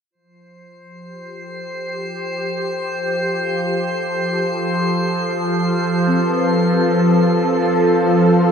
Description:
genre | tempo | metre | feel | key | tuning
ambient | 66 BPM | 3/4 | straight | F lydian | A4 = 440 Hz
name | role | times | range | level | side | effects
warm analog pad | sustained chords | 0.1-8.5 s | F3 to A4 | -18 LUFS | equal | chorus, shimmer reverb
overtone-sweeping drone | drone | 1.3-8.5 s | F3 | -28 LUFS | equal | chorus, built-in reverb, phaser
drifting glass-harmonics texture | texture | 1.1-8.5 s | C5 to C7 | -24 LUFS | left 1 dB | chorus, built-in reverb, shimmer reverb
vibraphone with medium mallets | arpeggios | 6.1-8.5 s | C4 to B4 | -19 LUFS | left 1 dB | analog delay, shimmer reverb
room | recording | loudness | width
wet cathedral reverb, RT60 6.0 s | dreamy mix soaked in reverb, cassette tape | -16 LUFS | side -7 dB against mid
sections
0.1-8.5 A section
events
fade-in on analog synth pad 0.1-8.5; fade-in on synth drone 0.1-8.5; fade-out on synth texture 0.1-8.5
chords
0.1 F

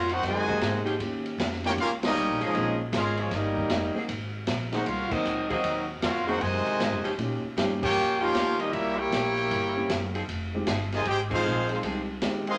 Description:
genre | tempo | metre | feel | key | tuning
jazz, big band swing | 155 BPM | 4/4 | swing 65% on 8ths | Eb major | A4 = 440 Hz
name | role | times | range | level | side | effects
brilliant trumpet section | melody | 0.0-12.6 s | Bb3 to C6 | -32 LUFS | equal | none
clear trombone section | second line | 0.0-12.5 s | C3 to G4 | -31 LUFS | equal | none
upright bass | bass | 0.0-12.6 s | F1 to Bb2 | -37 LUFS | equal | none
open jazz drum kit | drums | 0.1-12.5 s | crash cymbal, hi-hat, kick drum, ride cymbal, snare drum | -35 LUFS | equal | none
dark concert grand piano | accompaniment | 0.5-12.5 s | Ab3 to Bb4 | -36 LUFS | equal | none
bright saxophone section | sustained chords | 0.9-12.0 s | F3 to Ab4 | -37 LUFS | equal | none
room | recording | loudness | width
moderate large studio reverb, RT60 1.2 s | none | -27 LUFS | mono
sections
0.0-12.6 A section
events
band accent 2.0, 5.1, 7.8, 11.2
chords
0.0 Ab9; 1.0 Eb9; 2.5 Bbm7; 3.3 Eb9; 4.1 Ab9; 7.2 Eb9; 8.7 C7b9; 10.3 Fm7

